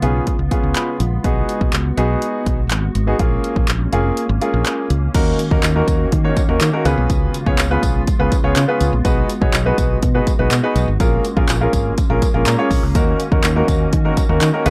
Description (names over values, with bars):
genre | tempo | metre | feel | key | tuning
dance-pop | 123 BPM | 4/4 | straight | Eb minor | A4 = 440 Hz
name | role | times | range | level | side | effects
clear grand piano | accompaniment | 0.0-14.7 s | Bb3 to Cb6 | -22 LUFS | equal | sidechain pumping
glassy FM pad | sustained chords | 0.0-14.7 s | Db3 to Gb4 | -29 LUFS | equal | none
fingered electric bass | bass | 0.0-14.7 s | F1 to Eb3 | -21 LUFS | equal | sidechain pumping
house drum kit | drums | 0.0-14.7 s | crash cymbal, handclaps, hi-hat, kick drum | -21 LUFS | equal | none
tambourine | percussion | 5.1-14.7 s | none | -38 LUFS | equal | none
room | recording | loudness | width
little or no reverb | none | -17 LUFS | mono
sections
0.0-5.1 A section; 5.1-14.7 B section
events
grand piano fill 0.5-1.2, 12.2-13.0; kick muted 4.2-5.1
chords
0.0 Db7; 1.2 Abm7/Cb; 3.2 Bbm7; 5.1 Ebm7; 6.9 Db7; 9.0 Abm7/Cb; 11.0 Bbm7; 13.0 Ebm7